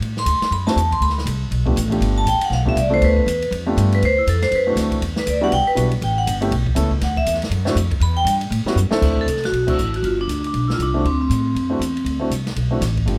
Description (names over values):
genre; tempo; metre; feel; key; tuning
jazz, small-group swing and bop; 240 BPM; 4/4; swing 60% on 8ths; D mixolydian; A4 = 440 Hz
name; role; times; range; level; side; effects
upright bass; bass; 0.0-13.2 s; G1 to A2; -23 LUFS; equal; none
open jazz drum kit; drums; 0.0-13.1 s; crash cymbal, hi-hat, kick drum, ride cymbal, snare drum; -30 LUFS; equal; none
vibraphone with medium hard mallets; melody; 0.2-12.2 s; C4 to C6; -23 LUFS; equal; none
warm upright piano; accompaniment; 0.7-13.2 s; G3 to A4; -25 LUFS; equal; none
room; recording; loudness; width
light reverb; close, detailed microphones; -19 LUFS; mono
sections
0.0-9.0 A section; 9.0-13.2 B section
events
vibraphone solo 0.0-9.0; drum fill 8.8; band accent 9.6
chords
0.0 D7; 1.0 G7; 4.0 D7; 5.0 Em7; 6.0 A7; 7.0 D; 8.0 Em; 8.5 A13; 9.0 D7; 10.0 G; 11.0 D7